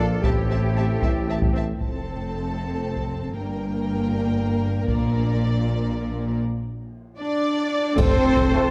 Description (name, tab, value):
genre	cinematic, epic orchestral film score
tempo	78 BPM (dotted quarters)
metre	6/8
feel	straight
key	unclear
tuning	A4 = 440 Hz
part	rich symphonic violin section	melody	0.0-8.7 s	C5 to A5	-38 LUFS	equal	none
part	rich studio violin section	second line	0.0-8.7 s	A4 to E5	-34 LUFS	equal	none
part	rich symphonic viola section	accompaniment	0.0-8.7 s	Bb3 to A4	-33 LUFS	equal	none
part	clear trombone section	sustained chords	0.0-1.5, 8.5-8.6 s	E3 to Bb3	-36 LUFS	equal	none
part	dark French horn section	sustained chords	0.0-8.7 s	A3 to A4	-31 LUFS	equal	none
part	warm woodwind section	sustained chords	0.0-1.6, 8.0-8.7 s	Bb3 to A5	-37 LUFS	equal	none
part	clear symphonic cello section	bass	0.0-8.7 s	F2 to A4	-33 LUFS	equal	none
part	clear symphonic double bass section	bass	0.0-8.7 s	F1 to Bb1	-29 LUFS	equal	none
part	mellow tuba	bass	0.0-1.7, 8.0-8.6 s	F1 to Bb1	-30 LUFS	equal	none
part	solo taiko drums	drums	0.2-8.7 s	none	-28 LUFS	equal	none
part	cymbal swell, clash cymbals and concert bass drum	percussion	4.9-8.7 s	none	-33 LUFS	equal	none
part	clear trumpet section	stabs	7.2-8.7 s	C5 to D5	-30 LUFS	equal	none
room	wet recital hall reverb, RT60 1.5 s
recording	dark, warm production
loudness	-23 LUFS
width	mono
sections	0.0-1.8 A section; 1.8-8.0 B section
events	break 6.4-8.0; drum fill 7.6-8.0; band accent 8.0-8.5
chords	0.2 Am7; 1.8 F; 3.4 Gm; 4.9 Bb; 6.4 N.C.; 8.0 F